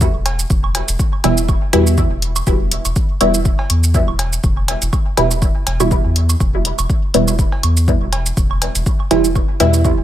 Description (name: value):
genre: dub techno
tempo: 122 BPM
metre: 4/4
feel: swing 55% on 16ths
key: unclear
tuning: A4 = 440 Hz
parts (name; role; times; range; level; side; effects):
- soft dub sub bass; bass; 0.0-10.0 s; E1 to E2; -18 LUFS; equal; sidechain pumping
- electronic kick drum; drums; 0.0-10.0 s; none; -17 LUFS; equal; overdrive
- electronic shaker and hi-hat; drums; 0.0-10.0 s; none; -22 LUFS; equal; overdrive
- cowbell and woodblock; percussion; 0.3-10.0 s; none; -27 LUFS; right 4 dB; sidechain pumping on perc, dub echo
- filtered dub chord stab; stabs; 1.2-9.9 s; B2 to E4; -18 LUFS; right 1 dB; phaser, cassette tape, sidechain pumping, dub echo
room: light reverb, digital ambience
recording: none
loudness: -13 LUFS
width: side -12 dB against mid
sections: 0.0-10.0 A section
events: none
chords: 0.0 Em